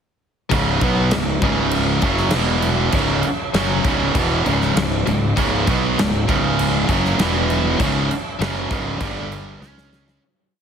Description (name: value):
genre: hard rock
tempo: 99 BPM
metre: 4/4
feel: straight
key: unclear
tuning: A4 = 441 Hz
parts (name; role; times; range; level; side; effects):
- high-gain distorted guitar; riff; 0.5-10.2 s; Db2 to Db4; -21 LUFS; right 10 dB; distortion
- scooped high-gain guitar; riff; 0.5-10.2 s; Db2 to Db4; -23 LUFS; left 10 dB; distortion
- fuzz fingered electric bass; bass; 0.5-10.2 s; Db1 to Db2; -23 LUFS; left 1 dB; overdrive
- huge arena drum kit; drums; 0.5-10.2 s; crash cymbal, kick drum, snare drum; -22 LUFS; equal; none
room: light reverb, small room ambience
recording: heavily compressed radio sound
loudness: -16 LUFS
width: side -7 dB against mid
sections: 0.5-10.2 riff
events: fade-out 7.8-10.2; drum fill 9.6-10.2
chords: 0.5 Db5; 2.3 E5; 3.0 Db5; 7.2 E5; 7.8 Db5; 9.0 G5; 9.6 Db5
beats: | 0.52 1.13 1.74 2.34 | 2.95 3.56 4.17 4.77 | 5.38 5.99 6.59 7.20 | 7.80 8.41 9.01 9.61